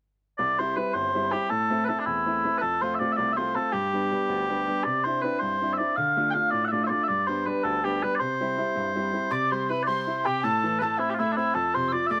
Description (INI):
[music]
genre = celtic folk, Celtic jig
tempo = 108 BPM (dotted quarters)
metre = 6/8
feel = straight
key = C major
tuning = A4 = 442 Hz
[part]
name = mellow small bagpipes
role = melody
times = 0.4-12.2 s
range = D4 to G5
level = -27 LUFS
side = equal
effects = none
[part]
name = bright upright piano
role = accompaniment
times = 0.4-12.2 s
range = G1 to F4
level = -32 LUFS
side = equal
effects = none
[part]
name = breathy mellow tin whistle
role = second line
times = 9.3-12.2 s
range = E5 to E6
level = -35 LUFS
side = equal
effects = none
[sound]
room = little or no reverb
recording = recorded outdoors, with no room sound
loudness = -26 LUFS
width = mono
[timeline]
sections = 0.4-9.3 A section; 9.3-12.2 A section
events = none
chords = 0.4 C; 1.5 Am; 2.6 F; 3.7 G; 4.9 Cadd9; 6.0 Dm; 7.1 G; 8.2 C; 10.4 Am; 11.5 F